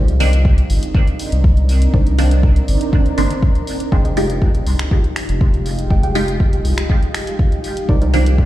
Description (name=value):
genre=dub techno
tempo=121 BPM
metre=4/4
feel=straight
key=F dorian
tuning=A4 = 439 Hz
part: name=granular cloud pad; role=sustained chords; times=0.0-8.5 s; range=Ab3 to Bb4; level=-24 LUFS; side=right 2 dB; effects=built-in reverb, sidechain pumping
part: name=warbly dusty pluck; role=riff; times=0.0-8.2 s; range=Eb4 to G5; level=-30 LUFS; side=right 3 dB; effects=chorus, sidechain pumping, dub echo
part: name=soft dub sub bass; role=bass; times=0.0-8.5 s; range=F1 to C2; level=-15 LUFS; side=equal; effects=tube saturation, sidechain pumping
part: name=punchy analog drum machine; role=drums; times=0.1-8.4 s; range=finger snaps, hi-hat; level=-29 LUFS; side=equal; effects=overdrive
part: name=filtered dub chord stab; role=stabs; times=0.2-8.2 s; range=Eb3 to G4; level=-23 LUFS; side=right 2 dB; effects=phaser, sidechain pumping, dub echo
part: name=electronic kick drum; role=drums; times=0.5-8.5 s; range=none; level=-14 LUFS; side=equal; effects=none
room=light reverb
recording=played on a big sound system in a bare room, stone room reverb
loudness=-13 LUFS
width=side -14 dB against mid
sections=0.0-8.5 A section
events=none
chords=0.0 Cm9; 3.9 Fm9; 7.9 Cm9